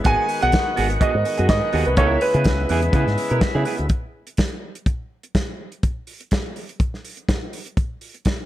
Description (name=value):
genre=disco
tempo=124 BPM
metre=4/4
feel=straight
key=unclear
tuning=A4 = 440 Hz
part: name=semi-hollow electric guitar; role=accompaniment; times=0.0-3.8 s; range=B3 to A#4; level=-26 LUFS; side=right 5 dB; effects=none
part: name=overdriven tonewheel organ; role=sustained chords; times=0.0-3.9 s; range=C#3 to F#4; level=-27 LUFS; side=left 2 dB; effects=slow rotary speaker
part: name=fingered electric bass with an envelope filter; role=bass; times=0.0-3.9 s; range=G#1 to C#3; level=-22 LUFS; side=equal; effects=none
part: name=warm soul drum kit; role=drums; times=0.0-8.4 s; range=hi-hat, kick drum, snare drum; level=-22 LUFS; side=equal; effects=gated reverb
part: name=warm baby grand piano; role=melody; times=0.1-3.6 s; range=B4 to G#5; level=-22 LUFS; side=right 2 dB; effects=none
room=light reverb, studio reverb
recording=none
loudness=-19 LUFS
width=side -14 dB against mid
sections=0.0-3.9 A section; 3.9-8.5 B section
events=none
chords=0.1 G#m7; 2.0 C#m7; 3.9 N.C.